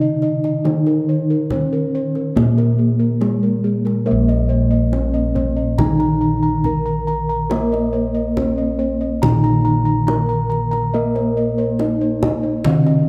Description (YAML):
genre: Javanese gamelan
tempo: 70 BPM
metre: 4/4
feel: straight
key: unclear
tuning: A4 = 440 Hz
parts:
  - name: gamelan-type bronze metallophone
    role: melody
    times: 0.0-13.1 s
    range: Ab3-40c to Bb4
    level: -23 LUFS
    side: equal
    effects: none
  - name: gamelan-type bronze metallophone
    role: accompaniment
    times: 0.0-13.1 s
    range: C3+40c to Bb3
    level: -24 LUFS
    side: equal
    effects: none
  - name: gamelan-type bossed gongs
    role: arpeggios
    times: 0.0-13.1 s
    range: Ab4-40c to Bb5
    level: -27 LUFS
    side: equal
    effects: none
  - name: gamelan-type bossed gongs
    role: bass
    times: 0.0-13.1 s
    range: Bb1 to Bb4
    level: -22 LUFS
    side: equal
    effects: none
  - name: kendang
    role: percussion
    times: 0.2-13.0 s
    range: none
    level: -27 LUFS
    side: equal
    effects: none
room: light reverb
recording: close, detailed microphones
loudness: -18 LUFS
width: mono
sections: 0.0-13.1 A section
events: none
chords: none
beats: | 0.65 1.51 2.36 3.22 | 4.08 4.93 5.79 6.65 | 7.51 8.36 9.22 10.08 | 10.94 11.79 12.65